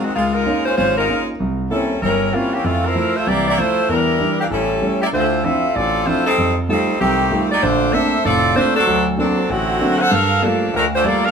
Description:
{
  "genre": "jazz",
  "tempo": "193 BPM",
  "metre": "4/4",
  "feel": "swing 63% on 8ths",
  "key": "F major, D minor from 5.1 s",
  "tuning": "A4 = 440 Hz",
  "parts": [
    { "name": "bright saxophone section", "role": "melody", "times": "0.0-11.3 s", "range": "D3 to F#5", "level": "-17 LUFS", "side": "equal", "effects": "none" },
    { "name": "warm concert grand piano", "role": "accompaniment", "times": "0.0-11.3 s", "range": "F1 to F4", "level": "-20 LUFS", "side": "right 1 dB", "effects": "none" }
  ],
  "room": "moderate large studio reverb, RT60 1.1 s",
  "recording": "band playing live in one room",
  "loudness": "-15 LUFS",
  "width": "side -6 dB against mid",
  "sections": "0.0-5.1 A section; 5.1-11.3 B section",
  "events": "none",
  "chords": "0.1 Db69; 1.4 C7b9; 2.6 Fmaj7; 3.9 Em7b5; 4.5 A7; 5.1 Dm9; 6.4 F9; 7.6 Bbmaj9; 8.9 D7b13; 10.1 Gm9"
}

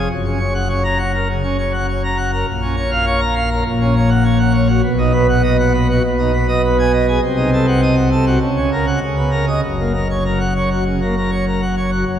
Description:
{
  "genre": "classical, organ toccata",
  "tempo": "101 BPM",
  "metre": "4/4",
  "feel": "straight",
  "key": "F# major",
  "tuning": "A4 = 440 Hz",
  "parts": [
    { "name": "pipe organ, plenum", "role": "solo", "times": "0.0-12.2 s", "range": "F#1 to A#5", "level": "-14 LUFS", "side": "equal", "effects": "none" }
  ],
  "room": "wet cathedral reverb, RT60 4.9 s",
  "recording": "heard from further back in the room",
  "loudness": "-14 LUFS",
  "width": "side -9 dB against mid",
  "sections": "0.0-12.1 A section",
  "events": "none",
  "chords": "0.1 F#; 2.5 A#m; 3.7 F#/A#; 4.9 B; 6.0 G#m/B; 7.2 Cdim7; 8.4 F#/C#; 9.0 C#sus2; 9.6 F#"
}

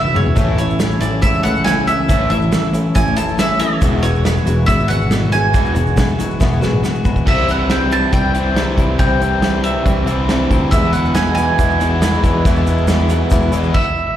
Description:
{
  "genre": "folk rock and heartland rock",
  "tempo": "139 BPM",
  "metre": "4/4",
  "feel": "straight",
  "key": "unclear",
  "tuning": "A4 = 440 Hz",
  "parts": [
    { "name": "bowl-back mandolin", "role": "melody", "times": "0.0-14.1 s", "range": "C#5 to A5", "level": "-20 LUFS", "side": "right 2 dB", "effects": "slapback echo, analog delay" },
    { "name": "picked twelve-string acoustic guitar", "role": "accompaniment", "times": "0.0-13.8 s", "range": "E2 to F#4", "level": "-21 LUFS", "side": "left 4 dB", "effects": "slapback echo" },
    { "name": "raw garage guitar", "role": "riff", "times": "0.0-13.7 s", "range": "E2 to E4", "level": "-21 LUFS", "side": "equal", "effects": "overdrive, slapback echo" },
    { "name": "unplugged drum kit", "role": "drums", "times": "0.0-13.8 s", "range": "crash cymbal, hi-hat, kick drum, snare drum, toms", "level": "-18 LUFS", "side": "equal", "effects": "none" },
    { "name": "picked electric bass", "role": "bass", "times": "0.4-13.7 s", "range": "E1 to E2", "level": "-18 LUFS", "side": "equal", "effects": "none" },
    { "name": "tube shaker", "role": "percussion", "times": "0.4-7.2, 10.7-13.7 s", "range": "none", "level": "-38 LUFS", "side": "right 2 dB", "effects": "none" }
  ],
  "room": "small room ambience",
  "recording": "live gig heard through the venue's PA, recital hall reverb",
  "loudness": "-13 LUFS",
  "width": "side -11 dB against mid",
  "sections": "0.0-7.3 A section; 7.3-14.2 B section",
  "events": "drum fill 0.0-0.4, 6.4-7.3",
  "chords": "0.4 A; 3.8 Eadd9; 7.3 C; 10.7 E"
}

